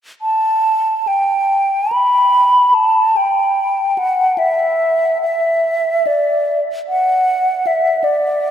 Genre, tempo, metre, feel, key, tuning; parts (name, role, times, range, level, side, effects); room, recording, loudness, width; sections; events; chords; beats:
classical, free, expressive piece for unaccompanied flute; 73 BPM; 3/4; uneven beats, rubato; E minor; A4 = 440 Hz
mellow hollow silver concert flute; solo; 0.2-8.5 s; D5 to B5; -13 LUFS; equal
wet cathedral reverb, RT60 5.3 s; in a vast, echoing space; -13 LUFS; side -9 dB against mid
0.2-8.5 A section
| 0.21 1.08 1.92 | 2.74 3.58 4.40 | 5.24 6.08 6.89 | 7.66 8.44